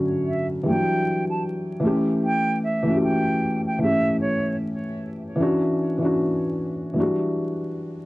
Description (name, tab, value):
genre	lo-fi hip hop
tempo	76 BPM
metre	4/4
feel	swing 60% on 16ths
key	unclear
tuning	A4 = 440 Hz
part	felt-muted upright piano	accompaniment	0.0-8.1 s	D3 to G4	-22 LUFS	equal	cassette tape, low-pass filter
part	bright concert flute	melody	0.3-4.6 s	C#5 to A5	-27 LUFS	right 2 dB	low-pass filter, tape echo
room	wet small room reverb, RT60 0.5 s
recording	dark, warm production, vinyl crackle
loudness	-21 LUFS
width	side -19 dB against mid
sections	0.0-8.1 A section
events	none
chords	0.0 Dmaj9; 0.6 Em9; 1.8 A7; 5.4 Dmaj9; 7.0 Em9